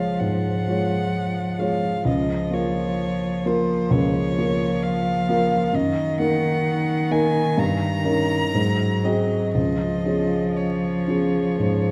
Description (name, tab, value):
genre	classical, slow romantic movement for piano trio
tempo	58-67 BPM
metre	4/4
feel	rubato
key	Db major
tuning	A4 = 444 Hz
part	rich violin	melody	0.0-11.9 s	C5 to Bb5	-30 LUFS	equal	none
part	rich cello	second line	0.0-11.9 s	Eb3 to Gb3	-27 LUFS	equal	none
part	warm baby grand piano	accompaniment	0.0-11.9 s	Db2 to Db5	-24 LUFS	equal	none
room	moderate scoring stage reverb, RT60 1.7 s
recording	dark, warm production, vinyl crackle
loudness	-22 LUFS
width	mono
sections	0.0-11.9 A section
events	none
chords	0.0 Db; 2.1 Bbm/Db; 5.7 Ebm/Gb; 7.6 Eb7/G; 8.6 Ab7; 9.6 Db